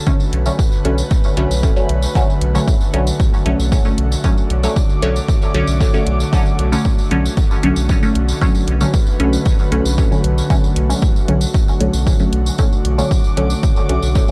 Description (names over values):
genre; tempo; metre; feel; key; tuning
dub techno; 115 BPM; 4/4; straight; B minor; A4 = 440 Hz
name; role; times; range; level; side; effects
airy breathy pad; sustained chords; 0.0-14.3 s; D3 to D6; -26 LUFS; equal; chorus, vintage 12-bit sampler grit, sidechain pumping
filtered dub chord stab; stabs; 0.0-14.3 s; D3 to C#4; -22 LUFS; equal; phaser, sidechain pumping, dub echo
electronic kick drum; drums; 0.1-14.3 s; none; -18 LUFS; equal; none
tambourine; percussion; 0.1-14.3 s; none; -32 LUFS; equal; none
warm sub bass; bass; 0.3-14.2 s; B1; -20 LUFS; equal; tube saturation, sidechain pumping
electronic hi-hat; drums; 0.3-14.0 s; none; -31 LUFS; equal; overdrive
room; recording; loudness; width
digital ambience; dry, gritty hardware recording, cassette tape; -16 LUFS; mono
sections
0.0-14.3 A section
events
none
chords
0.0 Bm7